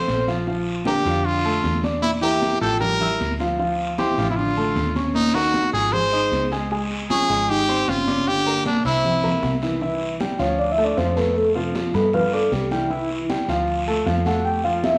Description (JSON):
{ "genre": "Afro-Cuban jazz", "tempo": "154 BPM", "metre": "4/4", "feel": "straight", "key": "C major from 9.8 s", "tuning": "A4 = 437 Hz", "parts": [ { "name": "brilliant trumpet", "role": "melody", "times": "0.0-9.6 s", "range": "D4 to C5", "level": "-24 LUFS", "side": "equal", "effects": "none" }, { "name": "soft octave-layered synth lead", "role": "second line", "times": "0.0-15.0 s", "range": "Bb3 to G5", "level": "-26 LUFS", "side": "equal", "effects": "chorus" }, { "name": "dark concert grand piano", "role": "accompaniment", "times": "0.0-15.0 s", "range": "E3 to Ab6", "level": "-28 LUFS", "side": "equal", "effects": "none" }, { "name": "deep dub fingered electric bass", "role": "bass", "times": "0.0-15.0 s", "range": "G1 to G2", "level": "-30 LUFS", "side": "equal", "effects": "none" }, { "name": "congas", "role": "percussion", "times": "0.1-15.0 s", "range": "none", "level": "-32 LUFS", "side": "equal", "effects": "none" }, { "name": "guiro", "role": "percussion", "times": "0.1-15.0 s", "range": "none", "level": "-38 LUFS", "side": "equal", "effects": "none" } ], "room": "wet large studio reverb, RT60 1.2 s", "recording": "none", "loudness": "-21 LUFS", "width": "mono", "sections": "0.0-9.8 A section; 9.8-15.0 B section", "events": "soft synth lead solo 9.8-15.0", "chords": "0.5 Bb6; 2.0 Em7b5; 2.8 A5; 3.6 Dm7; 5.2 Ebm7; 5.9 Ab; 6.7 Dbmaj9; 8.3 Gm; 9.0 C7; 9.8 C; 10.6 Dm; 11.4 Fadd9; 12.1 G5; 12.9 C; 13.7 Dm; 14.5 Fadd9" }